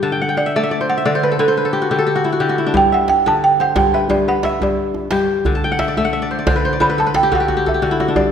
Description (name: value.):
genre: west african traditional, West African string and xylophone music.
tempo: 89 BPM.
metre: 4/4.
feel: swing 54% on 16ths.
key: unclear.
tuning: A4 = 440 Hz.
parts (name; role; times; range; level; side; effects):
kora; arpeggios; 0.0-8.3 s; G2 to A5; -16 LUFS; left 2 dB; none.
balafon; melody; 0.4-8.3 s; A4 to B5; -16 LUFS; right 4 dB; none.
djembe; percussion; 2.7-8.3 s; none; -23 LUFS; right 2 dB; none.
room: wet scoring stage reverb, RT60 1.7 s.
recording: recorded in a church or concert hall.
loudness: -14 LUFS.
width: side -8 dB against mid.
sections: 0.0-8.2 A section.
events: balafon solo 0.0-8.2; kora fill 0.0-2.7, 5.5-8.2; drum fill 7.5-8.2.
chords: 0.0 D5; 2.7 G; 5.5 D5.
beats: | 0.04 0.72 1.39 2.07 | 2.75 3.43 4.10 4.78 | 5.46 6.14 6.81 7.49 | 8.17.